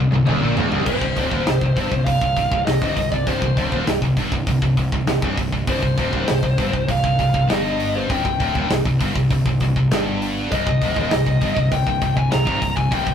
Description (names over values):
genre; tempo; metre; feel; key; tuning
heavy metal; 100 BPM; 4/4; straight; C minor; A4 = 440 Hz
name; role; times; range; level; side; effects
distorted electric guitar; riff; 0.0-0.9 s; C2 to Bb2; -23 LUFS; equal; overdrive
heavy high-gain guitar; riff; 0.0-13.1 s; C2 to Bb2; -20 LUFS; equal; distortion
fuzz fingered electric bass; bass; 0.0-13.1 s; C1 to Bb1; -26 LUFS; equal; overdrive
modern studio drum kit; drums; 0.1-13.1 s; crash cymbal, hi-hat, kick drum, snare drum, toms; -23 LUFS; equal; none
bluesy overdriven lead guitar; melody; 0.9-13.1 s; C5 to Bb5; -23 LUFS; left 1 dB; distortion
room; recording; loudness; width
moderate small room ambience, RT60 0.5 s; rough rehearsal-room recording; -17 LUFS; side -8 dB against mid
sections
0.9-13.1 A section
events
drum fill 0.0-0.9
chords
0.0 Cm; 0.9 C5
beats
0.27 | 0.87 1.47 2.07 2.67 | 3.28 3.88 4.48 5.08 | 5.69 6.29 6.89 7.50 | 8.10 8.70 9.31 9.91 | 10.51 11.12 11.72 12.32 | 12.92